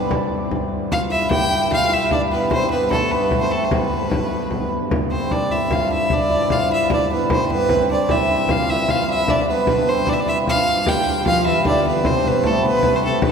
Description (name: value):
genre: medieval dance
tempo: 101 BPM (dotted quarters)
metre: 6/8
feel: straight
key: G mixolydian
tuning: A4 = 440 Hz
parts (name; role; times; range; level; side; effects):
- rich fiddle; melody; 0.0-13.3 s; A4 to G5; -20 LUFS; right 1 dB; none
- hammered dulcimer; second line; 0.0-13.3 s; A3 to G4; -22 LUFS; right 1 dB; tape echo
- pipe organ, strings celeste; drone; 0.0-13.3 s; G2; -27 LUFS; left 2 dB; none
- frame drum; percussion; 0.1-13.3 s; none; -23 LUFS; left 2 dB; none
- rich viola da gamba; second line; 11.2-13.3 s; A2 to F3; -24 LUFS; left 4 dB; none
room: wet cathedral reverb, RT60 5.2 s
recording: heard from further back in the room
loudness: -16 LUFS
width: side -6 dB against mid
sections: 0.0-2.5 A section; 2.5-12.0 B section; 12.0-13.3 B section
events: none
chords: none